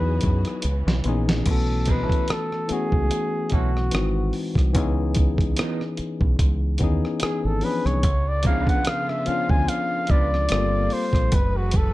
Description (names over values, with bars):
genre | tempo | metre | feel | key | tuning
R&B, neo-soul | 73 BPM | 4/4 | swing 54% on 16ths | unclear | A4 = 438 Hz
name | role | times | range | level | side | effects
warm flugelhorn | melody | 0.0-11.9 s | F#4 to G#5 | -27 LUFS | equal | none
barky tine electric piano | accompaniment | 0.0-11.4 s | E3 to A4 | -27 LUFS | left 4 dB | none
rich studio string section | sustained chords | 0.0-1.5, 8.0-11.9 s | C#3 to B4 | -35 LUFS | right 1 dB | none
deep dub fingered electric bass | bass | 0.0-11.9 s | F#1 to F#2 | -23 LUFS | equal | none
dusty soul sampler-style drum kit | drums | 0.2-11.9 s | crash cymbal, hi-hat, kick drum, rim click, snare drum | -23 LUFS | equal | none
electric guitar through a small old amp | second line | 1.9-10.3 s | E3 to B4 | -32 LUFS | right 6 dB | none
room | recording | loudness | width
digital ambience | dark, warm production | -20 LUFS | side -17 dB against mid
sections
0.0-1.5 A section; 1.5-11.9 B section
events
drum fill 0.6-1.5; flugelhorn solo 1.5-11.9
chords
0.0 Emaj9; 0.6 C#m9; 1.5 B9sus4; 3.9 G#7b13; 4.7 C#m9; 8.0 C#7b9; 10.5 Gm11; 11.3 F#m11